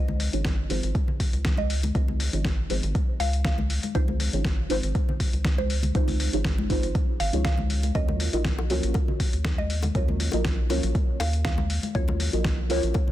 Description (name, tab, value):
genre	deep house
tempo	120 BPM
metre	4/4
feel	swing 53% on 16ths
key	unclear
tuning	A4 = 436 Hz
part	mallet-like synth pluck	melody	0.0-12.2 s	C5 to F5	-35 LUFS	right 2 dB	chorus, phaser, analog delay
part	deep mellow chord stab	stabs	0.0-13.1 s	Eb4 to Eb5	-31 LUFS	right 1 dB	chorus, phaser, cassette tape, sidechain pumping, analog delay
part	rubbery square bass	bass	0.0-12.9 s	Ab1 to Eb2	-27 LUFS	equal	sidechain pumping
part	congas and bongos	percussion	0.1-13.1 s	none	-34 LUFS	left 3 dB	none
part	dusty soul sampler-style drum kit	drums	0.2-13.1 s	hi-hat, snare drum	-32 LUFS	left 1 dB	studio reverb
part	electronic kick drum	drums	0.5-13.1 s	none	-26 LUFS	equal	overdrive, studio reverb
room	little or no reverb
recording	dense, heavily limited modern master, faint mains hum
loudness	-23 LUFS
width	side -14 dB against mid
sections	0.0-13.1 A section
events	filter sweep on synth stab 0.0-13.1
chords	0.0 Dbmaj9; 8.0 Ebm9